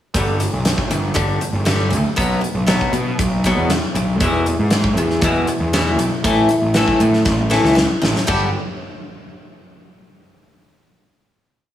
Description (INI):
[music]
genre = quiet-loud alternative rock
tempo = 118 BPM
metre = 4/4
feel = straight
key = G major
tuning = A4 = 440 Hz
[part]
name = picked swing-style acoustic guitar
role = arpeggios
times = 0.1-8.5 s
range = E2 to G4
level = -19 LUFS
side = left 2 dB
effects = none
[part]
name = fuzz picked electric bass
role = bass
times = 0.1-8.5 s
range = G1 to B2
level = -19 LUFS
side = equal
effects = overdrive
[part]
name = huge arena drum kit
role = drums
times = 0.1-8.4 s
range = crash cymbal, hi-hat, kick drum, snare drum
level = -21 LUFS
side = equal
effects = none
[sound]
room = light reverb, small room ambience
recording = none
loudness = -15 LUFS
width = side -11 dB against mid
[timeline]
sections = 0.1-8.3 verse; 8.3-10.3 final chord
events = drum fill 7.3-8.3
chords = 0.1 G; 2.2 B5; 4.2 E; 6.2 A5; 8.3 G5